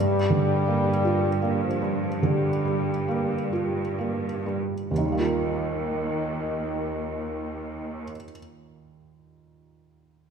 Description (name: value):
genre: cinematic, emotional film score for orchestra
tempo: 42-55 BPM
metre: 4/4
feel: rubato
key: Eb major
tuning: A4 = 441 Hz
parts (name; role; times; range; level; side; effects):
- felt-muted upright piano; accompaniment; 0.0-10.3 s; Eb2 to Bb4; -26 LUFS; right 3 dB; none
- warm French horn section; sustained chords; 0.0-8.0 s; Eb3 to G3; -29 LUFS; left 3 dB; none
- clear studio cello section; bass; 0.0-8.0 s; Eb2 to G2; -31 LUFS; right 1 dB; none
room: moderate scoring stage reverb, RT60 1.9 s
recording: none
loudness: -24 LUFS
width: side -6 dB against mid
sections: 0.0-4.9 A section; 4.9-10.3 B section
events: slowing down 0.0-4.9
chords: 0.0 Gm7; 4.9 Ebadd9